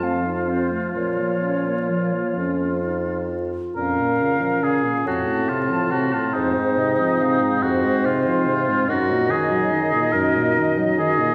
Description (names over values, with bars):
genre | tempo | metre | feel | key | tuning
classical, slow romantic movement for wind quintet | 42-48 BPM (dotted quarters) | 6/8 | rubato | Bb minor | A4 = 443 Hz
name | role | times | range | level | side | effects
bright concert flute | melody | 0.0-11.3 s | C5 to A5 | -29 LUFS | equal | none
warm oboe | second line | 0.0-11.3 s | Eb4 to Bb4 | -26 LUFS | equal | none
mellow French horn | accompaniment | 0.0-11.3 s | F2 to Gb3 | -29 LUFS | equal | none
mellow clarinet | accompaniment | 0.0-11.3 s | F3 to F4 | -28 LUFS | equal | none
mellow bassoon | bass | 0.0-11.2 s | F2 to Bb2 | -28 LUFS | equal | none
room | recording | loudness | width
wet scoring stage reverb, RT60 1.9 s | heard from further back in the room, vinyl crackle | -21 LUFS | mono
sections
0.0-3.8 A section; 3.8-11.3 A section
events
none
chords
0.0 F7; 1.0 Bbm; 3.8 Bbm/F; 5.1 F; 6.3 Fm; 8.9 Ebm/Gb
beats
| 0.96 2.37 | 3.76 5.06 | 6.35 7.62 | 8.88 10.13